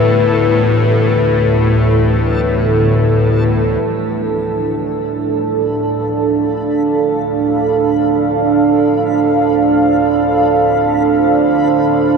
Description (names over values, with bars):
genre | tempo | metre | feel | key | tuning
ambient | free time | none | none | D dorian | A4 = 440 Hz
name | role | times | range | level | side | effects
deep dark ambient pad | sustained chords | 0.0-12.2 s | D4 to F5 | -13 LUFS | right 2 dB | chorus, built-in reverb, shimmer reverb
bowed-like drone | drone | 0.0-12.2 s | D2 to A2 | -17 LUFS | left 1 dB | built-in reverb
backwards swelling texture | texture | 0.0-12.2 s | A4 to B5 | -28 LUFS | equal | built-in reverb, shimmer reverb
bronze singing bowl | arpeggios | 3.8-10.0 s | F3 | -35 LUFS | left 4 dB | none
room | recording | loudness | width
wet huge ambient reverb, RT60 9.0 s | in a vast, echoing space | -12 LUFS | side -5 dB against mid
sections
0.0-3.8 A section; 3.8-12.2 B section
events
fade-in on synth drone 3.8-12.2; fade-in on synth texture 3.8-12.2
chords
0.0 Gadd9; 3.8 Dm